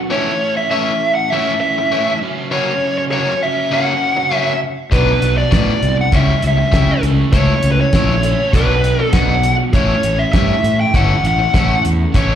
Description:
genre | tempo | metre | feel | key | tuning
indie rock | 100 BPM | 4/4 | straight | unclear | A4 = 440 Hz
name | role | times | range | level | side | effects
overdriven electric guitar | riff | 0.0-12.4 s | F#2 to E4 | -22 LUFS | right 6 dB | analog chorus, slapback echo
dark smooth lead guitar | melody | 0.1-12.4 s | B4 to G5 | -17 LUFS | equal | overdrive, slapback echo, digital delay
biting overdriven guitar | riff | 0.1-12.3 s | B2 to E4 | -22 LUFS | left 8 dB | slapback echo
fuzz fingered electric bass | bass | 4.9-12.3 s | G1 to A2 | -16 LUFS | equal | overdrive
cloth-damped thuddy drum kit | drums | 4.9-12.3 s | hi-hat, kick drum, snare drum | -16 LUFS | equal | none
room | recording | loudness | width
light reverb | live gig heard through the venue's PA, club reverb | -13 LUFS | side -10 dB against mid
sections
0.0-12.4 A section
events
none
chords
0.1 A; 2.2 F#; 4.9 Bm7; 6.1 C#dim; 7.0 A/C#; 8.5 Bm; 9.7 A

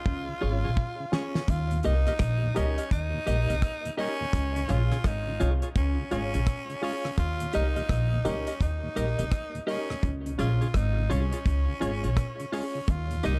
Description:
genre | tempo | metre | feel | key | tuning
roots reggae | 84 BPM | 4/4 | swing 63% on 16ths | Eb mixolydian | A4 = 440 Hz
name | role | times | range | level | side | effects
raspy tenor saxophone | melody | 0.0-13.4 s | Db4 to F4 | -36 LUFS | equal | tape echo
upright bass | bass | 0.1-13.4 s | Ab1 to Eb2 | -30 LUFS | equal | none
damped 70s drum kit | drums | 0.1-13.4 s | hi-hat, kick drum, rim click, snare drum | -32 LUFS | equal | none
mellow tonewheel organ | accompaniment | 0.3-13.3 s | Eb2 to F4 | -41 LUFS | equal | overdrive, chorus vibrato, slow rotary speaker, tape echo
clean electric guitar | accompaniment | 0.4-13.4 s | F4 to Eb5 | -39 LUFS | equal | tape echo
barky reed electric piano | stabs | 0.4-13.4 s | Db4 to F5 | -39 LUFS | equal | overdrive, medium tremolo
room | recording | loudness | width
light reverb, small room ambience | dark, warm production | -28 LUFS | mono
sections
0.0-1.5 A section; 1.5-13.4 B section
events
drum fill 0.1-1.5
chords
0.0 Db; 1.5 Eb; 4.3 Db; 7.2 Eb; 10.0 Db; 12.9 Eb

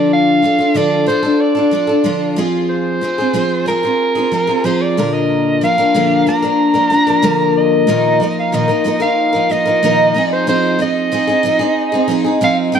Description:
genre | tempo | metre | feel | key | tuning
pop | 93 BPM | 4/4 | straight | unclear | A4 = 440 Hz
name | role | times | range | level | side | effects
breathy soprano saxophone | melody | 0.0-12.8 s | Bb4 to Bb5 | -16 LUFS | right 2 dB | none
picked twelve-string acoustic guitar | accompaniment | 0.0-12.8 s | Bb2 to Bb4 | -14 LUFS | left 1 dB | none
room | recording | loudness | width
moderate plate reverb, RT60 2.4 s | dark, warm production | -12 LUFS | side -7 dB against mid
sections
0.0-7.9 A section; 7.9-12.8 B section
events
none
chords
0.0 Dm; 2.4 Fm; 5.0 Bb; 7.9 Bbsus4; 10.2 Fm7

